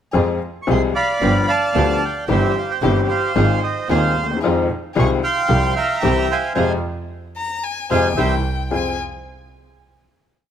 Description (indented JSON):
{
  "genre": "tango",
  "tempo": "112 BPM",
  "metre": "4/4",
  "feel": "rubato",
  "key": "F minor",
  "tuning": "A4 = 436 Hz",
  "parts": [
    { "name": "bright upright piano", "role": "accompaniment", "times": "0.1-8.9 s", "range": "Eb1 to Ab4", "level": "-21 LUFS", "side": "left 6 dB", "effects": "none" },
    { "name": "warm chamber string section", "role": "stabs", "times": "0.1-9.0 s", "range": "B3 to Ab4", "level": "-28 LUFS", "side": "right 2 dB", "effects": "none" },
    { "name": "bright double bass", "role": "bass", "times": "0.1-9.0 s", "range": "G1 to F2", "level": "-21 LUFS", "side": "right 2 dB", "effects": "none" },
    { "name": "bandoneon", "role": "melody", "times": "0.6-9.0 s", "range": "G4 to Db6", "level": "-20 LUFS", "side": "right 3 dB", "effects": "none" },
    { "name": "rich violin", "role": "second line", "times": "7.4-9.0 s", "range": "G5 to Bb5", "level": "-26 LUFS", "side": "left 6 dB", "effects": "none" }
  ],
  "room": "light reverb",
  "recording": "close, detailed microphones",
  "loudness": "-16 LUFS",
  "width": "side -9 dB against mid",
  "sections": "0.1-8.7 A section; 8.7-10.5 final chord",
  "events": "band accent 6.6-8.7",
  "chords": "0.1 Fm; 1.2 G7; 2.3 C/G; 3.4 Ab6; 4.4 Fm7; 5.5 Csus4; 6.6 Fm; 8.2 C; 8.7 Fm",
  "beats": "| 0.14 0.68 1.22 1.75 | 2.29 2.83 3.36 3.89 | 4.43 4.96 5.50 6.03 | 6.57 7.10 7.64 8.18 | 8.73"
}